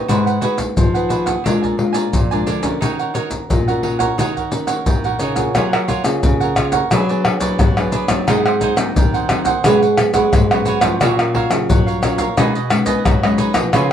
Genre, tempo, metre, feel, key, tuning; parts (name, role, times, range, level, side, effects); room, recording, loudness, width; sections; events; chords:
samba and choro; 88 BPM; 4/4; straight; Eb minor, F# major from 5.6 s; A4 = 442 Hz
cavaquinho; accompaniment; 0.0-13.9 s; D4 to Ab5; -21 LUFS; right 6 dB
nylon-string guitar; accompaniment; 0.0-13.9 s; G#2 to Cb5; -22 LUFS; left 2 dB
nylon-string guitar; bass; 0.0-13.9 s; Ab2 to B3; -20 LUFS; equal
maracas, surdo, pandeiro and tamborim; percussion; 0.1-13.9 s; -18 LUFS; left 1 dB
moderate studio ambience, RT60 0.5 s; minimal, uncompressed stereo recording; -14 LUFS; side -9 dB against mid
0.0-5.6 A section; 5.6-13.9 B section
0.1 Abm7; 1.5 Bb7; 2.8 Ebm7; 5.6 F#maj9; 6.9 Bm6/F#; 8.3 G#7; 9.6 C#7sus4/G#; 11.0 F#maj7/A#; 12.4 B69